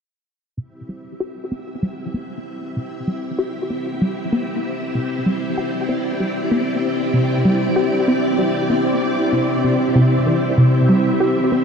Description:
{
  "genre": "ambient, sequencer-driven space music",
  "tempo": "96 BPM",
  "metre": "4/4",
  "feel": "straight",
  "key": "unclear",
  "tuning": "A4 = 437 Hz",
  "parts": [
    { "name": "string machine, full ensemble", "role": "sustained chords", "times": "0.6-11.6 s", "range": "C4 to E5", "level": "-20 LUFS", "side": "equal", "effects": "ensemble chorus" },
    { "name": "plucky analog bass", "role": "riff", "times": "0.6-11.6 s", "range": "C3 to G4", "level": "-20 LUFS", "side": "equal", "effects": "wide subtle chorus, tape echo" }
  ],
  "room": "wet shimmer reverb, RT60 7.0 s",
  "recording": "cassette tape",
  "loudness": "-17 LUFS",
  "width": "side -6 dB against mid",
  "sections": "0.6-10.6 A section; 10.6-11.6 B section",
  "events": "fade-in on string machine 0.6-10.6; filter sweep on analog synth bass 0.6-10.6",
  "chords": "0.6 C"
}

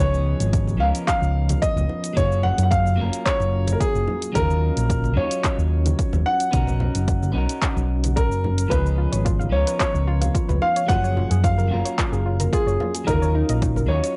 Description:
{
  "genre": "sunset chillout",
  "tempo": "110 BPM",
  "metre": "4/4",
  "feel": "straight",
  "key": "F# major",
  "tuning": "A4 = 440 Hz",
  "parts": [
    { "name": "warm concert grand piano", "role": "melody", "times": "0.0-14.1 s", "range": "G#4 to F#5", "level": "-27 LUFS", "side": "equal", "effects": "cassette tape, analog delay" },
    { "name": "electric guitar at the edge of break-up", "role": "accompaniment", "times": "0.0-14.2 s", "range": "E#3 to C#5", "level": "-32 LUFS", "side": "equal", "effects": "cassette tape, analog delay" },
    { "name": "fingered electric bass", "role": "bass", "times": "0.0-14.0 s", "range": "F#1 to F#2", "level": "-23 LUFS", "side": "equal", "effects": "none" },
    { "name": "deep house drum kit", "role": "drums", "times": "0.0-14.1 s", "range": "handclaps, hi-hat, shaker", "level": "-32 LUFS", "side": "equal", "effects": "overdrive, cassette tape" },
    { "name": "electronic kick drum", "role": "drums", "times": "0.5-13.7 s", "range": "none", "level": "-27 LUFS", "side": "equal", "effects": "overdrive, cassette tape" },
    { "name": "congas and bongos", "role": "percussion", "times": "0.7-13.9 s", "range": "none", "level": "-33 LUFS", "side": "equal", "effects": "none" },
    { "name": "soft round pluck", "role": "arpeggios", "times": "8.7-14.2 s", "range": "D#4 to E#5", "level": "-33 LUFS", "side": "equal", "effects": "chorus, cassette tape, analog delay" }
  ],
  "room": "light reverb",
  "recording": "home recording on cassette, nothing above 11.0 kHz",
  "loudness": "-21 LUFS",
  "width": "mono",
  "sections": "0.0-14.2 A section",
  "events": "none",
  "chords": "0.0 C#7; 2.2 F#maj9; 4.4 D#m7; 6.5 Bmaj7; 8.7 C#7; 10.9 F#maj9; 13.1 D#m7"
}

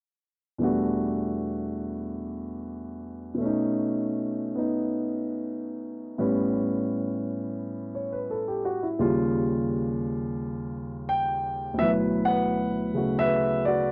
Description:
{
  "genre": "solo jazz",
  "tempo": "86 BPM",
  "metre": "4/4",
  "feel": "swing 67% on 8ths",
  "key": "D major",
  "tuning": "A4 = 440 Hz",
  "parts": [
    { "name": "dark baby grand piano", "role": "solo", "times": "0.6-13.9 s", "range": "D2 to G5", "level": "-28 LUFS", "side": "equal", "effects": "none" }
  ],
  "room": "little or no reverb",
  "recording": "dry, close 1970s-style studio recording",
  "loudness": "-28 LUFS",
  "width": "mono",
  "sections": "0.6-11.8 A section; 11.8-13.9 B section",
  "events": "none",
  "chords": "0.6 Em11; 3.4 B9; 6.2 A9; 9.0 Eb9; 11.8 D69"
}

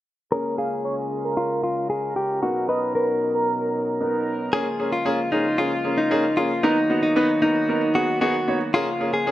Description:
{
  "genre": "pop",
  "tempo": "114 BPM",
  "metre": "4/4",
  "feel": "straight",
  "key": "unclear",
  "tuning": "A4 = 440 Hz",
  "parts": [
    { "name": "direct-recorded clean electric guitar", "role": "melody", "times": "0.3-9.3 s", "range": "Eb4 to B4", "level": "-22 LUFS", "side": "left 1 dB", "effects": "digital delay" },
    { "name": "clear baby grand piano", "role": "accompaniment", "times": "0.3-9.3 s", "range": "Bb3 to Db5", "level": "-26 LUFS", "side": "right 1 dB", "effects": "none" },
    { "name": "warm brass ensemble", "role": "sustained chords", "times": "0.3-9.3 s", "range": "B2 to Bb4", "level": "-29 LUFS", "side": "right 2 dB", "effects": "none" },
    { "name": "expressive synth lead", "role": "melody", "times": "0.6-3.7 s", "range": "Bb4 to F5", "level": "-28 LUFS", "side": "right 3 dB", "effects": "chorus, digital delay" }
  ],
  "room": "light reverb, small room ambience",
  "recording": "low-pass filter",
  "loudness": "-20 LUFS",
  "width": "side -14 dB against mid",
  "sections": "0.3-4.5 A section; 4.5-9.3 B section",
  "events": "filter sweep 0.3-4.5",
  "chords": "0.3 Bbm7; 2.4 Bmaj7; 4.5 Bbm7; 6.6 Bmaj7; 8.7 Bbm7"
}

